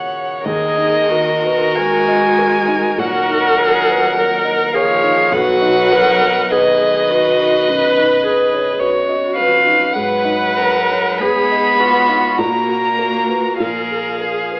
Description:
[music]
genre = classical, slow romantic movement for piano quintet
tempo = 44-54 BPM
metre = 4/4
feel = rubato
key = Eb minor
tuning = A4 = 440 Hz
[part]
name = dark violin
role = melody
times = 0.0-14.6 s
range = Db5 to Cb6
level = -19 LUFS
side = equal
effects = none
[part]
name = rich cello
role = second line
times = 0.0-14.6 s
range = Db3 to Cb4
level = -28 LUFS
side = equal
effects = none
[part]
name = warm violin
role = second line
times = 0.0-14.6 s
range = Gb4 to Gb5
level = -22 LUFS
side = equal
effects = none
[part]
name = dark baby grand piano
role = accompaniment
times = 0.0-14.6 s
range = B1 to Eb5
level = -23 LUFS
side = equal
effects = none
[part]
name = dark viola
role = accompaniment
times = 0.5-14.6 s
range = F4 to B4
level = -21 LUFS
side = equal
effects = none
[sound]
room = wet recital hall reverb, RT60 1.3 s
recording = AM radio sound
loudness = -15 LUFS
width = mono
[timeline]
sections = 0.4-14.6 A section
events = none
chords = 0.4 Ebm; 5.3 B; 9.9 Abm7; 12.4 Gbadd11/Bb; 13.6 Bb5

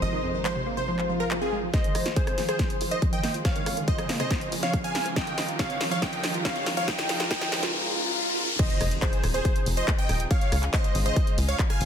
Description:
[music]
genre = uplifting trance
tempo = 140 BPM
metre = 4/4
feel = straight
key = F minor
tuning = A4 = 440 Hz
[part]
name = supersaw stab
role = melody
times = 0.0-11.9 s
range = Ab4 to Ab5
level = -32 LUFS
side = right 1 dB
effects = sidechain pumping, digital delay
[part]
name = rich chamber string section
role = sustained chords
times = 0.0-11.9 s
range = C3 to C5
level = -36 LUFS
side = left 2 dB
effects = sidechain pumping
[part]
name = wide unison pluck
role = arpeggios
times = 0.0-7.7 s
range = F2 to F4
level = -33 LUFS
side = right 3 dB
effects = sidechain pumping, digital delay
[part]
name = tight sequencer bass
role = bass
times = 0.0-11.9 s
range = Eb1 to Eb2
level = -30 LUFS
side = equal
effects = tube saturation, sidechain pumping, high-pass filter
[part]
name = big-room dance drum kit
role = drums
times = 0.5-11.9 s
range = crash cymbal, handclaps, hi-hat, rim click, snare drum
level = -32 LUFS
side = equal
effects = soft clipping on snare, studio reverb, sidechain pumping on hats, sidechain pumping on cymbals
[part]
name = swell, riser and impact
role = sound effects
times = 1.0-10.3 s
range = none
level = -32 LUFS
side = left 2 dB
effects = none
[part]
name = plucky unison lead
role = second line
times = 1.7-11.9 s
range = C5 to Ab5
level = -34 LUFS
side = left 1 dB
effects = cassette tape, sidechain pumping, digital delay
[part]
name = electronic kick drum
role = drums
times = 1.7-11.7 s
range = none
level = -26 LUFS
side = equal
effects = studio reverb
[sound]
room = moderate recital hall reverb, RT60 1.7 s, digital ambience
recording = dense, heavily limited modern master, high-pass filter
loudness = -23 LUFS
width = side -8 dB against mid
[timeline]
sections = 0.0-1.7 A section; 1.7-8.6 B section; 8.6-11.9 C section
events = swell 1.0-1.7, 7.7-8.6; build-up 1.7-8.6; drum fill 1.7-7.7; riser 1.7-8.6; filter sweep on synth pluck 1.7-8.6; filter sweep 1.7-8.6; drop 8.6-11.9; impact 8.6-10.3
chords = 0.0 Ab; 1.7 Fm7; 3.5 Db; 5.2 Ebadd9; 6.9 Bbm7; 8.6 Fm7; 10.3 Db

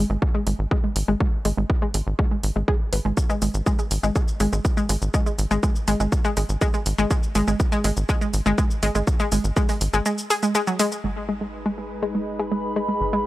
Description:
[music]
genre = melodic techno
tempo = 122 BPM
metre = 4/4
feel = straight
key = G# minor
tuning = A4 = 440 Hz
[part]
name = analog pluck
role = arpeggios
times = 0.0-13.2 s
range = F#3 to B4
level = -24 LUFS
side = equal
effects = chorus, sidechain pumping, analog delay
[part]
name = tight sequencer bass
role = bass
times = 0.0-13.3 s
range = G#1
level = -24 LUFS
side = equal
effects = sidechain pumping
[part]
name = electronic kick drum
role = drums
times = 0.2-9.7 s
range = none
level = -21 LUFS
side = equal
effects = overdrive
[part]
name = electronic hi-hat and shaker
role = drums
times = 0.5-11.0 s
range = none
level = -31 LUFS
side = equal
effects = overdrive, sidechain pumping on hats, sidechain pumping on perc
[part]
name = lush unison pad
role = sustained chords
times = 11.2-13.3 s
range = G#3 to B4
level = -30 LUFS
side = right 1 dB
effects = chorus, phaser, sidechain pumping
[part]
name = warbly tape-like pad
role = texture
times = 12.2-13.3 s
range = G#4 to B5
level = -28 LUFS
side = equal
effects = chorus, built-in reverb, sidechain pumping
[sound]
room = little or no reverb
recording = dry, gritty hardware recording, transformer saturation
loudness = -20 LUFS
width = side -16 dB against mid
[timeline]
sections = 0.0-11.0 A section; 11.0-13.3 B section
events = filter sweep on synth arpeggio sound 0.0-11.0, 11.0-13.3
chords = 0.0 N.C.; 11.0 G#m

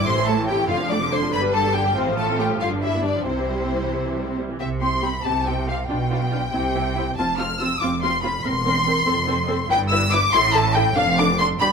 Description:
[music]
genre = quick classical-period movement for string orchestra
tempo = 94 BPM (dotted quarters)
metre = 6/8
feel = rubato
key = C major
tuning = A4 = 440 Hz
[part]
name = rich chamber violin section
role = melody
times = 0.0-11.7 s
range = C5 to F6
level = -24 LUFS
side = left 2 dB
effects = none
[part]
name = rich chamber violin section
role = second line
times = 0.0-11.7 s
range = C4 to F6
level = -25 LUFS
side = left 3 dB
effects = none
[part]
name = rich symphonic viola section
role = accompaniment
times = 0.0-11.7 s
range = C3 to B4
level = -26 LUFS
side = right 2 dB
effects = none
[part]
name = clear symphonic cello section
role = bass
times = 0.0-11.7 s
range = E2 to C3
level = -27 LUFS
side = right 2 dB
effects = none
[part]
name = rich studio double bass section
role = bass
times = 0.0-11.7 s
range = E1 to C2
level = -28 LUFS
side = right 3 dB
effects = none
[sound]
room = moderate large studio reverb, RT60 1.3 s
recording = minimal, uncompressed stereo recording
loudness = -19 LUFS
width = side -6 dB against mid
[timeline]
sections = 0.0-4.6 A section; 4.6-11.7 B section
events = none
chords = 0.1 Am; 0.7 Dm/F; 1.3 G5; 2.0 F/A; 2.6 G7; 3.3 C; 4.6 C5; 5.9 G7/B; 6.5 C; 7.2 F5; 8.4 C7/E; 9.1 F; 9.7 Em/G; 10.3 A5; 11.0 Dm/F

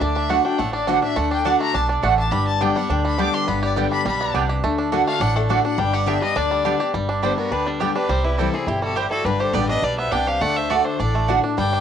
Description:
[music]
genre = bluegrass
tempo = 208 BPM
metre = 4/4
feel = straight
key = G major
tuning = A4 = 441 Hz
[part]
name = bluegrass banjo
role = melody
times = 0.0-11.8 s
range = G3 to G4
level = -24 LUFS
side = right 5 dB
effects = plate reverb
[part]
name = clear fiddle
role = second line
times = 0.0-11.8 s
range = B3 to D6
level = -26 LUFS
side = left 9 dB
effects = cassette tape, plate reverb
[part]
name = picked steel-string acoustic guitar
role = accompaniment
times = 0.0-11.8 s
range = G2 to G4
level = -25 LUFS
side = left 8 dB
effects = cassette tape
[part]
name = upright bass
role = bass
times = 0.0-11.8 s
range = G1 to D2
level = -26 LUFS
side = right 1 dB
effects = none
[part]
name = mandolin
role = stabs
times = 0.3-11.4 s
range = A3 to G5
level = -22 LUFS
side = right 10 dB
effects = cassette tape, plate reverb
[part]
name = clear fiddle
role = melody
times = 7.2-11.8 s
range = D4 to G5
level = -24 LUFS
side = left 1 dB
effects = plate reverb
[sound]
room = moderate booth ambience, RT60 0.2 s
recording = home recording on cassette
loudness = -18 LUFS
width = side -8 dB against mid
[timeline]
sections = 0.0-6.9 A section; 6.9-11.8 B section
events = fiddle solo 0.0-6.9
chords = 0.0 D; 2.3 G; 4.6 D; 5.8 G; 8.1 C; 9.3 G; 10.4 D

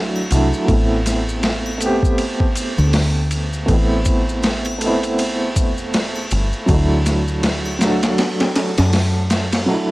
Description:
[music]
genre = trip hop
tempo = 80 BPM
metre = 4/4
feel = swing 59% on 16ths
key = A dorian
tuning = A4 = 439 Hz
[part]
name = felt-muted upright piano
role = accompaniment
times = 0.0-9.9 s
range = F#3 to A4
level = -20 LUFS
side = right 1 dB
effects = tremolo, low-pass filter, cassette tape, tape echo
[part]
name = deep dub fingered electric bass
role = bass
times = 0.0-9.7 s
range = E1 to F#2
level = -19 LUFS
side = equal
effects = tube saturation
[part]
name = triangle and maracas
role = percussion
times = 0.2-9.7 s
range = none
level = -33 LUFS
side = left 2 dB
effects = none
[part]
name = dusty soul sampler-style drum kit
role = drums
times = 0.3-9.7 s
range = hi-hat, kick drum, ride cymbal, snare drum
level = -20 LUFS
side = equal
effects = overdrive
[sound]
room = light reverb, digital ambience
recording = home recording on cassette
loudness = -15 LUFS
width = side -19 dB against mid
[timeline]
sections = 0.0-9.9 A section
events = none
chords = 0.0 Dadd9; 0.7 Amadd9; 6.7 Dadd9

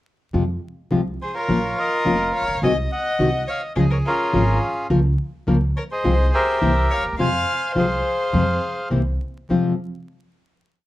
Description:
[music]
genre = tango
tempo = 105 BPM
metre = 4/4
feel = rubato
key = F minor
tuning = A4 = 440 Hz
[part]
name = nylon-string guitar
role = accompaniment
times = 0.3-9.7 s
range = F2 to Bb4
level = -22 LUFS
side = left 2 dB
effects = none
[part]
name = upright bass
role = bass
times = 0.3-9.7 s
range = F1 to F2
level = -22 LUFS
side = right 1 dB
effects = none
[part]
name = bandoneon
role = melody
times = 1.2-8.9 s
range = Db4 to Ab5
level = -22 LUFS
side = right 1 dB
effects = none
[part]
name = warm violin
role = second line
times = 1.2-8.9 s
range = F4 to F5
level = -26 LUFS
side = left 2 dB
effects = none
[sound]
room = moderate club reverb, RT60 0.9 s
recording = vinyl crackle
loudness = -18 LUFS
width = side -15 dB against mid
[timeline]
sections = 0.3-9.5 A section; 9.5-10.9 final chord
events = none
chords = 0.3 Fm; 1.5 Bbm; 2.6 Ab7/C; 3.8 Db; 4.9 Bbm/Db; 6.0 Fm/C; 6.6 C7; 7.2 Fm; 8.9 C7; 9.5 Fm

